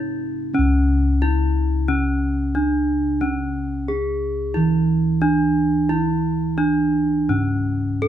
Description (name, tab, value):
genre	Javanese gamelan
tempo	90 BPM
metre	4/4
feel	straight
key	unclear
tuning	A4 = 440 Hz
part	gamelan-type bronze metallophone	melody	0.0-8.1 s	C#4 to A4-20c	-21 LUFS	equal	none
part	gamelan-type bronze metallophone	accompaniment	0.0-8.1 s	C#3 to C#4	-26 LUFS	right 5 dB	none
part	gamelan-type bossed gongs	bass	0.0-8.1 s	C#2 to E4-30c	-22 LUFS	left 2 dB	none
room	moderate large studio reverb, RT60 0.9 s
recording	band playing live in one room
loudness	-18 LUFS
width	side -10 dB against mid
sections	0.5-8.1 A section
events	none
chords	none